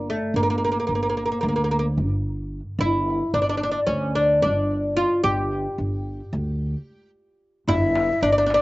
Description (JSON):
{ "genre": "Turkish makam ensemble", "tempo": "221 BPM (eighths)", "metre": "9/8", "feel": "straight", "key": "G makam nikriz", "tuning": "A4 = 440 Hz", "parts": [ { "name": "oud", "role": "melody", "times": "0.0-8.6 s", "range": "A3 to G4", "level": "-21 LUFS", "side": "equal", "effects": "none" }, { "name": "upright bass", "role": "bass", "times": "0.0-8.6 s", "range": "G1 to D2", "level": "-25 LUFS", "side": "equal", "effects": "none" }, { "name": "breathy ney", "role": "second line", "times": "7.7-8.6 s", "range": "D5 to E5", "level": "-24 LUFS", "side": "left 3 dB", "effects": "slapback echo" }, { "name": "darbuka", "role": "percussion", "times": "7.7-8.6 s", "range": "none", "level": "-27 LUFS", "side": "right 1 dB", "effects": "none" } ], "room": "little or no reverb", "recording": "recorded outdoors, with no room sound, nothing above 7.8 kHz", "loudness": "-20 LUFS", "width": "side -19 dB against mid", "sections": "0.0-7.7 A section", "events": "break 6.9-7.7", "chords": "none" }